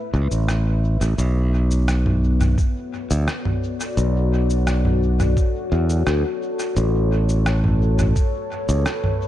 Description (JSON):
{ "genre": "ambient dub", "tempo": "86 BPM", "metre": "4/4", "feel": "straight", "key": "B minor", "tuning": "A4 = 440 Hz", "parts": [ { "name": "deep dark ambient pad", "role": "sustained chords", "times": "0.0-9.3 s", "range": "A3 to E5", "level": "-26 LUFS", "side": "left 3 dB", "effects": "chorus, built-in reverb" }, { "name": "modern bright fingered electric bass", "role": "bass", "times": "0.1-8.8 s", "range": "A1 to E2", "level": "-18 LUFS", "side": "equal", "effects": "none" }, { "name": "electronic cabasa, rim click and congas", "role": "drums", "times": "0.3-9.2 s", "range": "none", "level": "-25 LUFS", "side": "right 1 dB", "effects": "studio reverb, dub echo" }, { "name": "electronic kick drum", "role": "drums", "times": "2.6-8.3 s", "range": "none", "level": "-19 LUFS", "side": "equal", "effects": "studio reverb" } ], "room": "little or no reverb", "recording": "echo-heavy mix", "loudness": "-18 LUFS", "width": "side -13 dB against mid", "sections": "0.0-1.2 A section; 1.2-9.3 B section", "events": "break 0.0-1.2", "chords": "0.0 Aadd9; 1.2 Bm7; 6.8 Aadd9" }